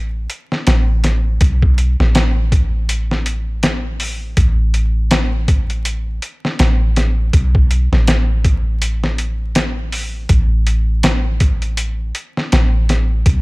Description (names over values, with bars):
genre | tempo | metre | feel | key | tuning
trip hop | 81 BPM | 4/4 | swing 58% on 16ths | unclear | A4 = 442 Hz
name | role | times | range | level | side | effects
soft 808-style bass | bass | 0.0-13.4 s | A1 to B1 | -16 LUFS | equal | tube saturation
trip hop sampler-style drum kit | drums | 0.3-13.4 s | hi-hat, kick drum, snare drum | -16 LUFS | equal | none
room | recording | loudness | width
digital ambience | vinyl crackle | -14 LUFS | side -24 dB against mid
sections
0.0-13.4 A section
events
none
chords
none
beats
0.67 | 1.41 2.15 2.89 3.63 | 4.38 5.12 5.86 6.60 | 7.34 8.08 8.82 9.56 | 10.30 11.04 11.78 12.52 | 13.26